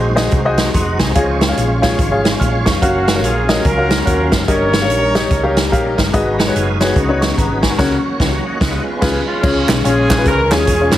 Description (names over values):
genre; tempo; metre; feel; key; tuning
uptempo gospel; 145 BPM; 4/4; swing 61% on 8ths; unclear; A4 = 440 Hz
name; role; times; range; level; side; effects
warm upright piano; accompaniment; 0.0-11.0 s; G2 to E#6; -18 LUFS; left 2 dB; none
dark studio string section; sustained chords; 0.0-9.4 s; E#3 to E#5; -28 LUFS; equal; none
tonewheel organ; sustained chords; 0.0-11.0 s; F#3 to A#5; -23 LUFS; right 2 dB; slow rotary speaker, chorus vibrato
hollow-body short-scale fingered electric bass; bass; 0.0-11.0 s; E1 to D#2; -20 LUFS; equal; none
swinging big-band drum kit; drums; 0.2-11.0 s; crash cymbal, hi-hat, kick drum, snare drum; -17 LUFS; equal; none
clear horn section; melody; 2.8-5.7, 9.3-11.0 s; G#3 to C#5; -18 LUFS; equal; none
group handclap; percussion; 9.7-11.0 s; none; -24 LUFS; right 3 dB; none
room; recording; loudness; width
light reverb, studio reverb; heavily compressed radio sound; -12 LUFS; side -13 dB against mid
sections
0.0-9.4 A section; 9.4-11.0 B section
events
band accent 7.8-9.4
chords
0.0 G#7; 1.2 C#; 2.8 F#maj7; 4.5 D#7/G; 6.1 G#m7; 7.0 C#9sus4; 7.8 F#/C#; 8.6 C#7; 9.4 C#